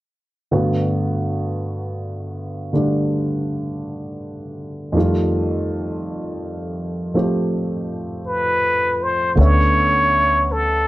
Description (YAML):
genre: jazz ballad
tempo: 54 BPM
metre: 4/4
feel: swing 67% on 8ths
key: unclear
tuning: A4 = 441 Hz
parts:
  - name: warm concert grand piano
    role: accompaniment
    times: 0.5-10.9 s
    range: F2 to E5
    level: -21 LUFS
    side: equal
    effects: none
  - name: trumpet with plunger mute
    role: melody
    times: 8.3-10.9 s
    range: A4 to C#5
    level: -16 LUFS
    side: equal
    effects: none
  - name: upright bass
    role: bass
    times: 9.4-10.9 s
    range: D2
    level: -18 LUFS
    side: equal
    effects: none
room: moderate studio reverb, RT60 0.5 s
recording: worn, warbling old tape, cassette tape, warbly pitch drift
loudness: -18 LUFS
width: side -17 dB against mid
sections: 0.5-9.4 A section; 9.4-10.9 B section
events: none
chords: 0.5 Gmaj9; 5.0 F9; 9.4 Dmaj7sus2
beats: | 0.50 1.62 2.74 3.85 | 4.95 6.05 7.15 8.26 | 9.38 10.49